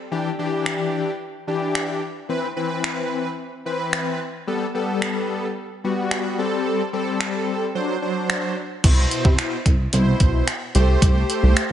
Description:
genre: dance-pop.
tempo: 110 BPM.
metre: 4/4.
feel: straight.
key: unclear.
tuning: A4 = 440 Hz.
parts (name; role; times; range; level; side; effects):
big bright polysynth; accompaniment; 0.1-11.6 s; B2 to C5; -23 LUFS; left 1 dB; chorus, sidechain pumping.
clean 12-bit digital drum machine; drums; 0.7-11.7 s; crash cymbal, finger snaps, hi-hat, kick drum; -21 LUFS; equal; none.
plucky analog bass; bass; 8.8-11.5 s; B1 to C3; -18 LUFS; equal; sidechain pumping.
room: moderate lush hall reverb, RT60 1.7 s.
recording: big arena sound, nothing above 11.0 kHz.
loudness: -20 LUFS.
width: side -11 dB against mid.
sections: 0.0-8.8 A section; 8.8-11.7 B section.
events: none.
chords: 0.1 Em7; 2.3 Cmaj7/E; 4.5 Gadd9; 6.4 Am7; 7.8 D7; 8.8 Cmaj7; 10.8 Am7/C.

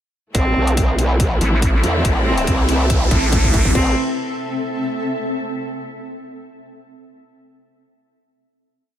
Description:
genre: heavy wobble dubstep.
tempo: 141 BPM.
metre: 4/4.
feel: swing 54% on 16ths, half-time.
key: A minor.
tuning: A4 = 440 Hz.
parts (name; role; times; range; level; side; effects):
rich cello; melody; 0.3-3.9 s; C4; -24 LUFS; right 1 dB; ping-pong delay.
warm studio string section; sustained chords; 0.3-3.9 s; C3 to E4; -26 LUFS; equal; sidechain pumping.
growl bass; bass; 0.3-3.9 s; A1 to E2; -18 LUFS; equal; chorus, overdrive.
dubstep drum kit; drums; 0.3-3.8 s; crash cymbal, hi-hat; -28 LUFS; left 4 dB; none.
electronic kick drum; drums; 0.3-3.8 s; none; -19 LUFS; equal; none.
riser; sound effects; 1.2-3.8 s; none; -26 LUFS; equal; none.
granular cloud pad; texture; 1.9-5.4 s; C4 to A5; -25 LUFS; equal; built-in reverb, sidechain pumping.
vowel-sweep wobble bass; bass; 1.4-3.7 s; A1; -17 LUFS; equal; chorus, overdrive.
room: light reverb, digital ambience.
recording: none.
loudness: -15 LUFS.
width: side -11 dB against mid.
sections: 0.3-3.8 build; 3.8-5.5 final chord.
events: build-up 0.3-3.8; riser 1.2-3.8; drum fill 2.0-3.8.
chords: 0.3 Am.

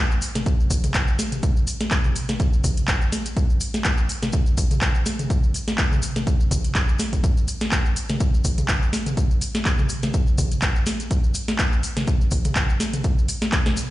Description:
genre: house.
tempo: 124 BPM.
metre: 4/4.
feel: swing 55% on 16ths.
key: none.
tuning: none.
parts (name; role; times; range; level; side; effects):
maracas; percussion; 0.1-13.9 s; none; -35 LUFS; left 4 dB; none.
booming analog drum machine; drums; 0.2-13.9 s; handclaps, hi-hat, snare drum, toms; -24 LUFS; equal; overdrive.
electronic kick drum; drums; 0.5-13.6 s; none; -21 LUFS; equal; none.
room: little or no reverb.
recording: played on a big sound system in a bare room, large studio reverb, nothing above 10.7 kHz.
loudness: -19 LUFS.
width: side -16 dB against mid.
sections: 0.0-13.9 A section.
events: none.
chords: none.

